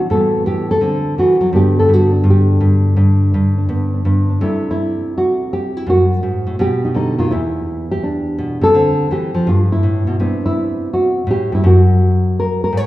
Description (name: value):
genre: solo jazz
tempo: 166 BPM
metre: 4/4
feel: swing 66% on 8ths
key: G major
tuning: A4 = 440 Hz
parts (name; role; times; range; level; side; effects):
- nylon-string guitar; solo; 0.0-12.9 s; E2 to C#5; -13 LUFS; equal; none
room: wet recital hall reverb, RT60 1.7 s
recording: recorded in a church or concert hall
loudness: -13 LUFS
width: side -16 dB against mid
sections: 0.0-4.4 A section; 4.4-12.9 B section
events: none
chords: 0.1 Asus2; 0.8 D7; 1.5 G; 4.4 C69; 5.9 F#madd9; 6.6 Baug; 7.3 Em7; 8.7 Dm9; 9.5 G69; 10.2 Cmaj9#11; 11.6 F#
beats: | 0.09 0.45 0.81 1.17 | 1.53 1.89 2.25 2.61 | 2.97 3.33 3.69 4.05 | 4.41 4.77 5.13 5.50 | 5.86 6.22 6.58 6.94 | 7.30 7.66 8.02 8.38 | 8.74 9.10 9.46 9.83 | 10.19 10.55 10.91 11.27 | 11.63 11.99 12.35 12.72